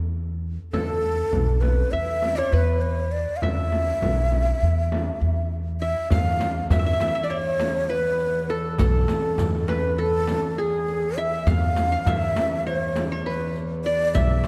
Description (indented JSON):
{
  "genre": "Turkish makam ensemble",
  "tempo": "201 BPM (eighths)",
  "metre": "9/8",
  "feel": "straight",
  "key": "E makam hicaz",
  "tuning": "A4 = 440 Hz",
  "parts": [
    { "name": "upright bass", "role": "bass", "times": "0.0-14.4 s", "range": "B1 to E2", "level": "-26 LUFS", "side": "equal", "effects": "none" },
    { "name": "breathy ney", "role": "melody", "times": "0.7-14.5 s", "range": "G#4 to F5", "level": "-28 LUFS", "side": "equal", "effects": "none" },
    { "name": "qanun", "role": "second line", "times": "0.7-14.5 s", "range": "G#4 to F5", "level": "-33 LUFS", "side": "equal", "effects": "none" },
    { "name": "frame drum", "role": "percussion", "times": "0.7-14.5 s", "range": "none", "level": "-32 LUFS", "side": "equal", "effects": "none" },
    { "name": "rich double bass", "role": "drone", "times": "6.1-14.5 s", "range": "E2", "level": "-33 LUFS", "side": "equal", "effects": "none" },
    { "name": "darbuka", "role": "percussion", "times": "6.1-14.5 s", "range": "none", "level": "-32 LUFS", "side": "equal", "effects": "none" },
    { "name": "riq", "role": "percussion", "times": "6.1-14.5 s", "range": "none", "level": "-40 LUFS", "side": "equal", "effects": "none" }
  ],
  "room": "moderate concert hall reverb, RT60 2.5 s",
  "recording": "dark, warm production",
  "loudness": "-23 LUFS",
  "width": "mono",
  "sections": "0.0-6.1 A section; 6.1-14.5 B section",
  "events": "none",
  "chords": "none"
}